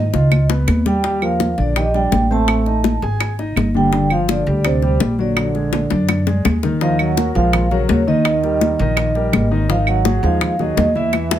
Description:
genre	Afro-Cuban jazz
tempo	166 BPM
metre	4/4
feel	straight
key	Eb minor from 6.8 s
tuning	A4 = 440 Hz
part	vibraphone with soft mallets	melody	0.0-11.4 s	C5 to A5	-22 LUFS	right 3 dB	plate reverb
part	mellow trombone	second line	0.0-11.4 s	C3 to A3	-23 LUFS	right 4 dB	none
part	warm concert grand piano	accompaniment	0.0-11.4 s	D3 to Ab5	-22 LUFS	left 3 dB	none
part	upright bass	bass	0.0-11.4 s	G1 to F#2	-19 LUFS	equal	none
part	bongos	percussion	0.1-11.4 s	none	-23 LUFS	left 8 dB	none
part	congas	percussion	0.1-11.4 s	none	-23 LUFS	equal	none
part	claves	percussion	0.3-11.3 s	none	-24 LUFS	right 5 dB	none
room	moderate club ambience, RT60 0.5 s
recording	none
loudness	-14 LUFS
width	side -11 dB against mid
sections	0.0-6.8 A section; 6.8-11.4 B section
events	drum fill 0.1-1.0, 5.7-6.8, 11.1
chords	0.3 C#9; 1.0 Ebmaj7; 2.5 Adim; 3.2 Ab5; 3.9 Gm7; 5.4 Bbaug7; 6.8 Ebmadd9; 8.3 Eb; 9.7 Ab5

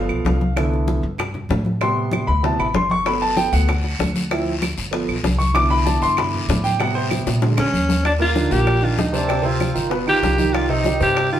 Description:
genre	Afro-Cuban jazz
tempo	192 BPM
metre	4/4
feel	straight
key	G major, Eb major from 8.0 s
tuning	A4 = 440 Hz
part	warm concert grand piano	accompaniment	0.0-11.4 s	Bb2 to D6	-21 LUFS	right 1 dB	none
part	upright bass	bass	0.0-11.4 s	G1 to Bb2	-22 LUFS	equal	none
part	bongos	percussion	0.1-11.3 s	none	-27 LUFS	left 4 dB	none
part	claves	percussion	0.1-11.3 s	none	-31 LUFS	right 4 dB	none
part	congas	percussion	0.1-11.4 s	none	-27 LUFS	equal	none
part	guiro	percussion	3.1-11.4 s	none	-32 LUFS	left 4 dB	none
part	growling alto saxophone	melody	7.6-11.4 s	C#4 to G4	-20 LUFS	equal	none
room	wet studio reverb, RT60 0.8 s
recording	band playing live in one room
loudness	-17 LUFS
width	side -10 dB against mid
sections	0.0-8.0 A section; 8.0-11.4 B section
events	grand piano solo 0.0-8.0; drum fill 7.3-8.0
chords	0.0 G7 (rootless); 0.6 Cmaj13; 1.8 Am7; 2.4 D13; 3.1 Gmaj7; 4.3 Dm7; 4.9 G7; 5.6 Cmaj9; 6.8 Am7; 7.4 Bb7alt; 8.0 Ebmaj9; 9.3 Ebmaj13; 9.9 Gaug7; 10.5 Cm

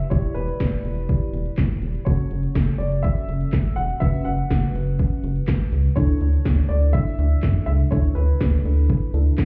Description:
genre	synth-pop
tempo	123 BPM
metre	4/4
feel	straight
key	unclear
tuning	A4 = 439 Hz
part	FM electric piano with soft pad layer	accompaniment	0.0-9.4 s	C#4 to D5	-34 LUFS	equal	chorus, tremolo
part	rubbery square bass	bass	0.0-9.4 s	E1 to F#2	-23 LUFS	equal	none
part	80s electronic pad drums	drums	0.0-9.4 s	handclaps, hi-hat, kick drum, snare drum	-25 LUFS	equal	none
part	dark baby grand piano	melody	0.1-9.1 s	B4 to F#5	-34 LUFS	equal	digital delay
room	little or no reverb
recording	heard muffled through a wall, club reverb, EQ, nothing above 7.6 kHz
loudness	-21 LUFS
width	mono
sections	0.0-9.4 A section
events	none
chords	0.0 Em; 2.1 F#m7; 6.0 Dsus2

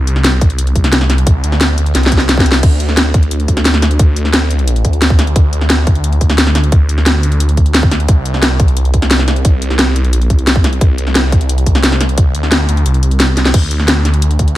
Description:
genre	dark technical drum and bass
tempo	176 BPM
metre	4/4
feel	straight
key	unclear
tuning	A4 = 442 Hz
part	phased detuned saw bass	bass	0.0-14.6 s	C2 to D2	-13 LUFS	equal	phaser, sidechain pumping
part	drum and bass drum kit	drums	0.1-14.5 s	crash cymbal, hi-hat, snare drum	-14 LUFS	equal	none
part	electronic kick drum	drums	0.4-14.5 s	none	-11 LUFS	equal	none
room	little or no reverb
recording	none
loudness	-9 LUFS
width	side -15 dB against mid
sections	0.0-13.5 A section; 13.5-14.6 A section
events	drop 0.0-13.5, 13.5-14.6; drum fill 1.9-2.6, 13.4; kick drops out 12.9-13.5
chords	none

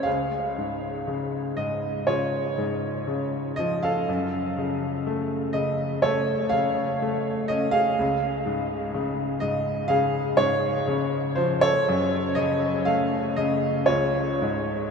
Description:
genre	classical, lyrical solo piano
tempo	61 BPM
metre	4/4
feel	rubato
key	Db major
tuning	A4 = 439 Hz
part	clear upright piano	solo	0.0-14.9 s	Db2 to F5	-22 LUFS	equal	none
room	wet huge ambient reverb, RT60 7.6 s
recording	in a vast, echoing space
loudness	-22 LUFS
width	side -5 dB against mid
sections	0.0-14.9 A section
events	none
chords	0.1 Db; 4.1 Gbm; 8.0 Db; 11.9 Gbm; 13.9 Db

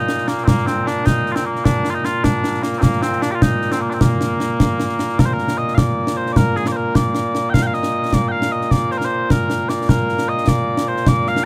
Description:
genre	scottish traditional, Scottish pipe music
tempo	102 BPM (dotted quarters)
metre	6/8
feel	straight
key	Bb major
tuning	A4 = 439 Hz
part	mellow small bagpipes	melody	0.0-11.5 s	Bb2 to G5	-22 LUFS	equal	none
part	concert snare drum and concert bass drum	drums	0.1-11.5 s	none	-21 LUFS	equal	none
room	little or no reverb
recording	none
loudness	-18 LUFS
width	mono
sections	0.0-5.2 A section; 5.2-11.5 B section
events	none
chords	none

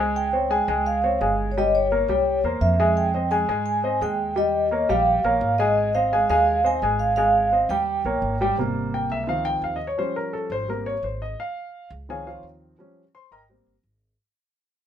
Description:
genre	Afro-Cuban jazz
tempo	171 BPM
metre	4/4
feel	straight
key	Ab major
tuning	A4 = 440 Hz
part	warm concert grand piano	accompaniment	0.0-13.7 s	C3 to C6	-25 LUFS	left 1 dB	none
part	upright bass	bass	0.0-14.1 s	G1 to Ab2	-29 LUFS	right 1 dB	none
part	vibraphone with soft mallets	melody	0.2-8.4 s	Db5 to Ab5	-21 LUFS	right 1 dB	none
room	moderate studio ambience, RT60 0.5 s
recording	minimal, uncompressed stereo recording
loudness	-20 LUFS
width	side -9 dB against mid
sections	0.0-8.6 A section; 8.6-14.2 B section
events	fade-out 8.6-14.2; grand piano solo 8.6-14.2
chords	0.2 Dbmaj7; 1.6 Gdim; 2.3 C7; 3.0 Fm9; 4.4 Eb9; 5.8 Ab6; 7.9 Eb7; 8.6 Abmaj7; 9.3 Dbmaj7; 10.0 Bbm13; 10.7 Abmaj7; 12.1 Dbmaj7; 12.8 Eb7; 13.5 Abmaj7

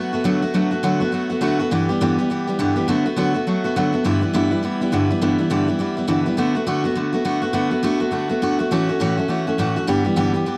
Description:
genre	rock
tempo	206 BPM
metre	4/4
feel	swing 60% on 8ths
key	D major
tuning	A4 = 441 Hz
part	picked steel-string acoustic guitar	solo	0.0-10.6 s	G2 to G4	-20 LUFS	equal	none
room	light reverb, small room ambience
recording	none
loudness	-20 LUFS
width	mono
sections	0.0-10.6 A section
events	none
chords	0.0 D6; 1.7 G6; 2.9 D6; 4.0 G6; 6.4 D6; 8.7 A6; 9.9 G6

